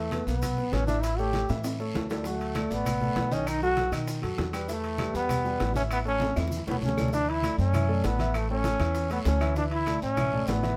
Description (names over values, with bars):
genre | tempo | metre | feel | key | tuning
latin, salsa | 197 BPM | 4/4 | straight | D major | A4 = 440 Hz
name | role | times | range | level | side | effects
bright trombone | melody | 0.0-10.8 s | A3 to G4 | -31 LUFS | equal | none
warm grand piano | accompaniment | 0.0-10.8 s | Eb3 to F#5 | -35 LUFS | equal | none
upright bass | bass | 0.0-10.8 s | A1 to B2 | -33 LUFS | equal | none
bongos | percussion | 0.1-10.6 s | none | -42 LUFS | equal | none
congas | percussion | 0.1-10.8 s | none | -37 LUFS | equal | none
guiro | percussion | 0.1-10.8 s | none | -49 LUFS | equal | none
maracas | percussion | 0.1-10.8 s | none | -49 LUFS | equal | none
timbales | percussion | 0.1-10.8 s | none | -40 LUFS | equal | none
claves | percussion | 2.6-10.3 s | none | -46 LUFS | equal | none
room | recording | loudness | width
light reverb | none | -28 LUFS | mono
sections
0.0-7.1 A section; 7.1-10.8 B section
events
drum fill 1.5-2.3, 6.2-7.1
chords
0.0 E5; 1.0 A; 2.3 D; 3.5 B7; 4.7 Em; 5.9 A; 7.1 Dadd9; 8.3 A; 9.6 Dsus2